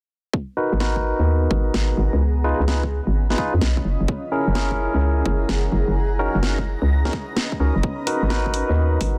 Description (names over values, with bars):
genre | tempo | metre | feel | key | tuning
UK garage, two-step garage | 128 BPM | 4/4 | swing 67% on 16ths | G# minor | A4 = 441 Hz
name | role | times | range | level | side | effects
electronic kick drum | drums | 0.3-9.1 s | none | -29 LUFS | equal | high-pass filter on kick
granular cloud pad | texture | 1.3-9.2 s | B3 to A#5 | -33 LUFS | equal | built-in reverb, sidechain pumping
barky tine electric piano | stabs | 0.6-9.2 s | C#4 to B4 | -27 LUFS | equal | low-pass filter, tape echo
hollow knocking FM bass | bass | 0.7-9.2 s | F#1 to E#2 | -22 LUFS | equal | sidechain pumping
garage drum kit | drums | 0.8-9.1 s | hi-hat, snare drum | -29 LUFS | equal | none
room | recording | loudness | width
little or no reverb | dense, heavily limited modern master | -21 LUFS | mono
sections
0.3-9.2 A section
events
none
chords
0.3 G#m9; 2.2 C#9; 3.9 F#9; 6.0 Bmaj9/F#; 7.8 G#m9